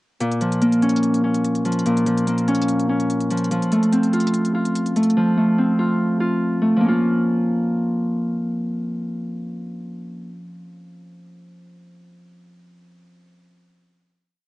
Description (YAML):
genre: hip hop, trap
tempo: 145 BPM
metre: 4/4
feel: half-time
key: Bb harmonic minor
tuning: A4 = 441 Hz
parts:
  - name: Celtic harp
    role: accompaniment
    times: 0.2-10.6 s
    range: Bb2 to F4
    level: -18 LUFS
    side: equal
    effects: low-pass filter, cassette tape, plate reverb
  - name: electronic hi-hat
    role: drums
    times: 0.2-5.2 s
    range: none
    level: -35 LUFS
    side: equal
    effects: cassette tape
room: moderate studio reverb, RT60 0.6 s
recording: home recording on cassette, nothing above 10.3 kHz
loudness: -18 LUFS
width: side -19 dB against mid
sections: 0.2-6.8 breakdown; 6.8-10.1 final chord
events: none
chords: 0.2 Bbm; 3.5 F; 6.8 Bbm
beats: | 0.20 0.62 1.03 1.44 | 1.86 2.27 2.69 3.10 | 3.51 3.93 4.34 4.75 | 5.17 5.58 6.00 6.41 | 6.82 7.24 7.65 8.06 | 8.48 8.89 9.31 9.72